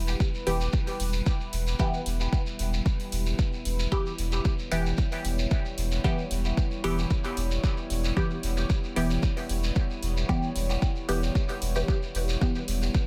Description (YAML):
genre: dub techno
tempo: 113 BPM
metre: 4/4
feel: straight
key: E dorian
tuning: A4 = 439 Hz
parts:
  - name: deep dark ambient pad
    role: sustained chords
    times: 0.0-13.1 s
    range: G3 to F#5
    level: -39 LUFS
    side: equal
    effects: chorus, built-in reverb, sidechain pumping
  - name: warm sub bass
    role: bass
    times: 0.0-12.9 s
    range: E1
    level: -30 LUFS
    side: equal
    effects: sidechain pumping
  - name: shekere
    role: percussion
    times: 0.1-13.1 s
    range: none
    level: -41 LUFS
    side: equal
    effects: dub echo
  - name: electronic kick drum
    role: drums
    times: 0.2-13.1 s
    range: none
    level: -29 LUFS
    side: equal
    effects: studio reverb
  - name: filtered dub chord stab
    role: stabs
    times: 0.5-12.6 s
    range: E3 to G4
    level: -35 LUFS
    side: equal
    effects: phaser, sidechain pumping, dub echo
  - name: electronic hi-hat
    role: drums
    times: 0.5-12.8 s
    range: none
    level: -41 LUFS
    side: equal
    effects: studio reverb
room: digital ambience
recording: echo-heavy mix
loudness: -28 LUFS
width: mono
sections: 0.0-13.1 A section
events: none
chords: 0.0 Em